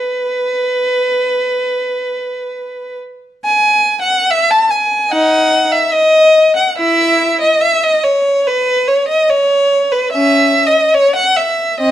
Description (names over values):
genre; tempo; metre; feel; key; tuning
classical, baroque-style suite movement for unaccompanied violin; 64-74 BPM; 4/4; rubato; E major; A4 = 444 Hz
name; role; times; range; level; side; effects
rich violin; solo; 0.0-11.9 s; C4 to A5; -11 LUFS; equal; none
room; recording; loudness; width
moderate stone room reverb, RT60 1.0 s; dark, warm production; -10 LUFS; side -12 dB against mid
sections
0.0-3.4 A section; 3.4-11.9 B section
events
none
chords
none